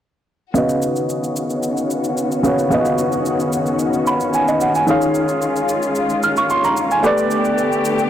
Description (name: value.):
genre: amapiano.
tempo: 111 BPM.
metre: 4/4.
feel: straight.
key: unclear.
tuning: A4 = 442 Hz.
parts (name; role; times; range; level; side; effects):
warm baby grand piano; accompaniment; 0.5-8.1 s; C#3 to E#6; -17 LUFS; right 1 dB; low-pass filter.
warm studio string section; sustained chords; 0.6-8.1 s; D3 to G4; -20 LUFS; left 2 dB; low-pass filter.
shaker; drums; 0.6-8.1 s; none; -34 LUFS; equal; none.
room: light reverb, studio ambience.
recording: blown-out, overdriven recording, overdrive.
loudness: -16 LUFS.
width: side -10 dB against mid.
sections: 0.6-8.1 A section.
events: filter sweep 0.6-8.1; grand piano fill 3.8-4.9.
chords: 0.6 C#9sus4; 4.9 D#9sus4; 7.0 A9sus4.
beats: | 0.55 1.09 1.63 2.17 | 2.71 3.25 3.79 4.34 | 4.88 5.42 5.96 6.50 | 7.04 7.58.